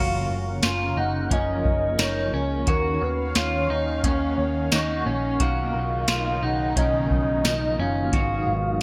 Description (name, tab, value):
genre	dream pop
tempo	88 BPM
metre	4/4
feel	straight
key	F# major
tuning	A4 = 441 Hz
part	soft octave-layered synth lead	melody	0.0-8.8 s	A#4 to F#5	-30 LUFS	equal	chorus, tremolo, digital delay
part	clean electric guitar	accompaniment	0.0-8.8 s	F#2 to A#4	-34 LUFS	equal	tremolo, ensemble chorus
part	phased analog pad	sustained chords	0.0-8.8 s	B2 to E#5	-34 LUFS	equal	phaser, chorus
part	clean electric guitar	arpeggios	0.0-8.8 s	C#4 to F#4	-30 LUFS	equal	lush chorus, digital delay
part	vintage muted picked electric bass	bass	0.0-8.8 s	F#1 to D#2	-31 LUFS	equal	none
part	soft vintage rhythm box	drums	0.6-8.3 s	hi-hat, kick drum, snare drum, tambourine	-28 LUFS	equal	gated reverb
room	moderate plate reverb, RT60 1.8 s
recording	bright 1980s-style digital production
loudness	-24 LUFS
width	mono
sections	0.0-8.8 A section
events	none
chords	0.0 F#maj7; 2.7 D#m9; 5.4 Bmaj9#11; 8.1 G#m7